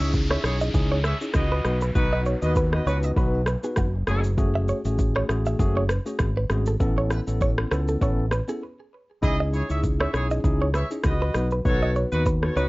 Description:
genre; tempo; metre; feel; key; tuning
afrobeats; 99 BPM; 4/4; swing 55% on 16ths; C# minor; A4 = 440 Hz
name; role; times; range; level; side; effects
clear horn section; second line; 0.0-4.2, 9.2-12.7 s; A3 to E5; -30 LUFS; equal; none
tine electric piano; accompaniment; 0.0-12.7 s; A3 to B4; -29 LUFS; left 1 dB; medium tremolo
fingered electric bass; bass; 0.0-12.7 s; F#1 to D#2; -24 LUFS; equal; none
afro-pop drum kit; drums; 0.0-12.7 s; kick drum, rim click, shaker; -25 LUFS; equal; overdrive
downlifter; sound effects; 0.0-4.4 s; none; -38 LUFS; equal; none
direct-recorded clean electric guitar; riff; 0.3-12.7 s; F#4 to E5; -30 LUFS; right 2 dB; tape echo
room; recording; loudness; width
light reverb; worn, warbling old tape, cassette tape, warbly pitch drift, nothing above 7.6 kHz; -21 LUFS; side -22 dB against mid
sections
0.0-12.7 A section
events
break 8.6-9.2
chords
0.0 C#madd9; 1.7 B; 4.1 F#madd9; 6.8 Aadd9; 9.2 C#madd9; 11.3 B

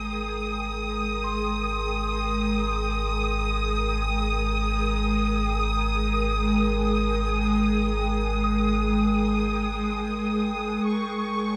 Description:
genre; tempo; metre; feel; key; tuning
ambient; free time; none; none; Ab major; A4 = 444 Hz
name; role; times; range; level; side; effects
evolving wavetable pad; sustained chords; 0.0-11.6 s; Ab3 to G5; -29 LUFS; equal; ensemble chorus, built-in reverb, phaser
soft synth bell; arpeggios; 0.0-11.0 s; C6 to Eb6; -40 LUFS; equal; chorus, tape echo
round analog bass; bass; 0.0-11.6 s; Ab1; -31 LUFS; equal; none
rich studio violin section; texture; 0.0-11.6 s; Db6 to Eb6; -31 LUFS; equal; none
room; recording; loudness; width
wet huge ambient reverb, RT60 8.6 s; dreamy mix soaked in reverb; -25 LUFS; mono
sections
0.0-11.6 A section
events
fade-in on ambient pad 0.0-11.6; fade-in on synth bell 0.0-11.6; fade-in on analog synth bass 0.0-11.6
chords
0.0 Abmaj7; 10.8 Dbsus2/Ab

